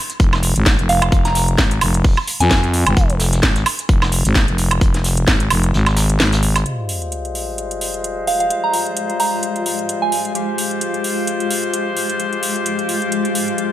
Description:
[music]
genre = bass house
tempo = 130 BPM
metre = 4/4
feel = swing 56% on 16ths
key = F minor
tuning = A4 = 440 Hz
[part]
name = garage drum kit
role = drums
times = 0.1-13.7 s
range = hi-hat, snare drum, woodblock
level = -20 LUFS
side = right 2 dB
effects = studio reverb
[part]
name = jazz brush drum kit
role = drums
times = 0.1-6.7 s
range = hi-hat, snare drum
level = -28 LUFS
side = equal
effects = high-pass filter on hats, studio reverb, high-pass filter on snare, high-pass filter on room
[part]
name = growling FM bass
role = bass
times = 0.2-6.6 s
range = F1 to F2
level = -16 LUFS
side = equal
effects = tube saturation, sidechain pumping
[part]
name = electronic kick drum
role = drums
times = 0.2-5.4 s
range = none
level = -15 LUFS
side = equal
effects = studio reverb
[part]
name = soft synth bell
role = melody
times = 0.9-3.0, 8.3-10.5 s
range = F5 to Bb5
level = -21 LUFS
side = right 2 dB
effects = chorus, ping-pong delay
[part]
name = dark horn section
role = stabs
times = 6.7-13.7 s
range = G3 to C5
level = -22 LUFS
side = left 4 dB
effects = sidechain pumping, low-pass filter, ping-pong delay
[part]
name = sub drop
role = sound effects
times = 6.7-8.5 s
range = none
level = -28 LUFS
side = equal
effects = none
[part]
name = granular cloud pad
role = texture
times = 8.3-13.7 s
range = Ab3 to F5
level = -24 LUFS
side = left 1 dB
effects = built-in reverb, sidechain pumping
[sound]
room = studio reverb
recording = none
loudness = -15 LUFS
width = side -13 dB against mid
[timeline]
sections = 0.0-6.7 A section; 6.7-13.7 B section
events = drop 0.0-6.7; kick drops out 5.7-6.7; impact 6.7-8.5; filter sweep on horn section 6.7-13.7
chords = 0.0 Fm; 6.7 Fmadd9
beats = 0.20 0.66 | 1.12 1.58 2.04 2.51 | 2.97 3.43 3.89 4.35 | 4.81 5.28 5.74 6.20 | 6.66 7.12 7.58 8.04 | 8.51 8.97 9.43 9.89 | 10.35 10.81 11.28 11.74 | 12.20 12.66 13.12 13.58

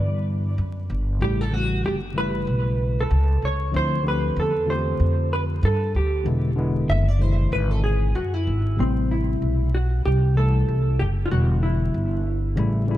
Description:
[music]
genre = hip hop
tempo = 95 BPM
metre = 4/4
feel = swing 59% on 16ths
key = A dorian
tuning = A4 = 439 Hz
[part]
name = hollow-body jazz guitar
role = melody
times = 0.0-13.0 s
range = C4 to E5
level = -27 LUFS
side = right 1 dB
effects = lush chorus, diffuse ambient delay
[part]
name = tine electric piano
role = accompaniment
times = 0.0-13.0 s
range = B2 to G4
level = -27 LUFS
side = left 2 dB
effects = medium stereo tremolo
[part]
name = upright bass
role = bass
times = 0.0-13.0 s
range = E1 to G2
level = -22 LUFS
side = equal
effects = none
[sound]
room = light reverb, small room ambience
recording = vinyl crackle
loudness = -20 LUFS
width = side -14 dB against mid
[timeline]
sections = 0.0-8.8 A section; 8.8-13.0 B section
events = hollow-body jazz guitar solo 0.0-8.8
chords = 0.0 Em7; 1.2 A7; 3.7 Dm9; 6.3 E7; 8.8 Am7; 11.3 Em7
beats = 0.58 | 1.21 1.84 2.47 3.10 | 3.73 4.37 5.00 5.63 | 6.26 6.89 7.52 8.16 | 8.79 9.42 10.05 10.68 | 11.31 11.95 12.58

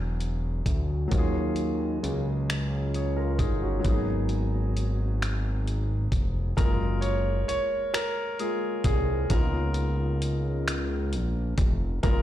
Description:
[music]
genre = slow six-eight R&B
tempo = 44 BPM (dotted quarters)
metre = 6/8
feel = straight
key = F# major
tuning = A4 = 440 Hz
[part]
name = clear grand piano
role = accompaniment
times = 0.0-12.2 s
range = F#3 to C#5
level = -31 LUFS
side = left 1 dB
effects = none
[part]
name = fat analog bass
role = bass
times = 0.0-12.2 s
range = E1 to D#2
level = -27 LUFS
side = equal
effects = none
[part]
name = dusty soul sampler-style drum kit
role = drums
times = 0.2-12.2 s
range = finger snaps, hi-hat, kick drum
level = -27 LUFS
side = equal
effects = none
[sound]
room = little or no reverb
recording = played on a big sound system in a bare room, large studio reverb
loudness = -24 LUFS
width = side -12 dB against mid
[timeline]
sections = 0.0-6.6 A section; 6.6-12.2 B section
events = grand piano solo 6.6-12.2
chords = 0.0 E69; 1.1 D#m11; 3.8 G#m7; 6.6 F#maj9; 9.3 C#13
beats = | 1.12 2.48 | 3.85 5.21 | 6.58 7.94 | 9.30 10.67 | 12.03

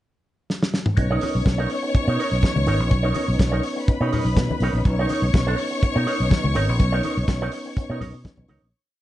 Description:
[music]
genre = disco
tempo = 124 BPM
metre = 4/4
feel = straight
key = unclear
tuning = A4 = 440 Hz
[part]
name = warm soul drum kit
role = drums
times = 0.5-8.6 s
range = hi-hat, kick drum, snare drum, toms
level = -22 LUFS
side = equal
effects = none
[part]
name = clear studio string section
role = second line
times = 1.0-8.7 s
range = B4 to C#6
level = -29 LUFS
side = left 3 dB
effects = none
[part]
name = electric guitar with an envelope filter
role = accompaniment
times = 1.0-8.7 s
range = D#4 to C#5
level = -28 LUFS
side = right 4 dB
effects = none
[part]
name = percussive tonewheel organ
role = sustained chords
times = 1.0-8.7 s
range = B3 to D#4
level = -29 LUFS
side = left 1 dB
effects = chorus vibrato, fast rotary speaker
[part]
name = fingered electric bass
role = bass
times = 1.0-8.7 s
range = G#1 to B2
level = -22 LUFS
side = equal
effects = none
[part]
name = congas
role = percussion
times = 1.0-8.6 s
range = none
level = -30 LUFS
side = left 4 dB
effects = none
[sound]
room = light reverb, small room ambience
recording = dark, warm production, nothing above 11.0 kHz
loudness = -19 LUFS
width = side -14 dB against mid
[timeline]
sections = 0.0-1.0 pickup bar; 1.0-8.7 pre-chorus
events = drum fill 0.5-1.0; fade-out 6.8-8.7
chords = 0.0 N.C.; 1.0 Bmaj9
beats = 0.00 0.48 | 0.97 1.46 1.94 2.43 | 2.91 3.40 3.88 4.37 | 4.85 5.34 5.82 6.31 | 6.79 7.28 7.77 8.25

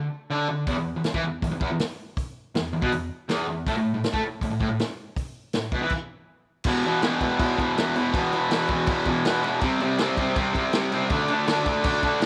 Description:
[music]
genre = garage rock duo or trio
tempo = 161 BPM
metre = 4/4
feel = straight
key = unclear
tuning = A4 = 440 Hz
[part]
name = fuzz guitar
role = riff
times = 0.0-12.3 s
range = E2 to D4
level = -26 LUFS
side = equal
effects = distortion
[part]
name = vintage drum kit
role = drums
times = 0.7-12.3 s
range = crash cymbal, hi-hat, kick drum, snare drum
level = -30 LUFS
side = equal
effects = none
[sound]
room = light reverb, small room ambience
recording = none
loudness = -25 LUFS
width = mono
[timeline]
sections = 0.0-6.7 A section; 6.7-12.3 B section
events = stop 5.9-6.7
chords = 0.0 D5; 0.7 E5; 3.7 A5; 6.7 E5; 9.6 C5; 11.1 D5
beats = 0.30 | 0.68 1.05 1.43 1.80 | 2.18 2.55 2.92 3.30 | 3.67 4.05 4.42 4.79 | 5.17 5.54 5.91 6.29 | 6.66 7.03 7.40 7.77 | 8.14 8.51 8.88 9.25 | 9.62 9.99 10.37 10.73 | 11.11 11.48 11.85 12.22

